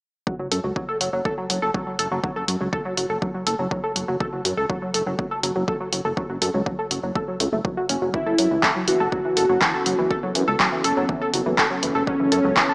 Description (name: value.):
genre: melodic techno.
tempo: 122 BPM.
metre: 4/4.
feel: straight.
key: F# minor.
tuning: A4 = 440 Hz.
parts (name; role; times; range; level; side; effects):
tight sequenced synth; arpeggios; 0.3-12.7 s; E3 to A4; -24 LUFS; equal; chorus, sidechain pumping, dub echo.
dark detuned saw bass; bass; 0.3-12.6 s; F#1 to F#2; -29 LUFS; equal; sidechain pumping.
electronic kick drum; drums; 0.3-12.7 s; none; -29 LUFS; equal; overdrive.
techno drum kit; drums; 0.5-12.7 s; handclaps, hi-hat; -21 LUFS; equal; overdrive, sidechain pumping on hats.
fat analog lead; melody; 8.1-12.7 s; C#4 to F#4; -22 LUFS; equal; analog chorus, sidechain pumping, tape echo.
deep dark ambient pad; sustained chords; 9.6-12.7 s; B3 to A4; -28 LUFS; equal; chorus, built-in reverb, sidechain pumping.
room: moderate lush hall reverb, RT60 1.8 s, digital ambience.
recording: small speaker sound.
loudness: -20 LUFS.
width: side -38 dB against mid.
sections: 0.3-12.7 A section.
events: none.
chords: 0.3 F#m; 8.1 Aadd9/F#.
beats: | 0.27 0.76 1.25 1.75 | 2.24 2.73 3.22 3.71 | 4.21 4.70 5.19 5.68 | 6.17 6.66 7.16 7.65 | 8.14 8.63 9.12 9.61 | 10.11 10.60 11.09 11.58 | 12.07 12.56.